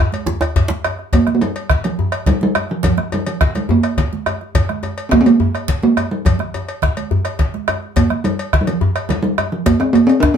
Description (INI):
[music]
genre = west african traditional, West African drum ensemble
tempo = 140 BPM (dotted quarters)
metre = 12/8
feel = straight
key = Bb major pentatonic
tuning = A4 = 440 Hz
[part]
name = congas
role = percussion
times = 0.1-10.4 s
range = none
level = -24 LUFS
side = right 3 dB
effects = none
[part]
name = cowbell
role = percussion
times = 0.1-10.2 s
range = none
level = -28 LUFS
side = left 2 dB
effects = none
[part]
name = djembe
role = percussion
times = 0.3-10.4 s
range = none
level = -22 LUFS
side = left 2 dB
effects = none
[part]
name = djembe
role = percussion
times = 0.3-0.8 s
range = none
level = -21 LUFS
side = right 1 dB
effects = none
[part]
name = bombo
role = percussion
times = 0.4-10.4 s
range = none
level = -18 LUFS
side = left 1 dB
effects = none
[part]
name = talking drum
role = melody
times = 1.1-10.4 s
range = F3 to D4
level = -15 LUFS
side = right 2 dB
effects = none
[sound]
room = wet studio reverb, RT60 0.5 s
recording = band playing live in one room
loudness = -14 LUFS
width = side -8 dB against mid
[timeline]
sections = 0.0-1.1 A section; 1.1-10.4 B section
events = drum fill 0.0-1.1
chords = none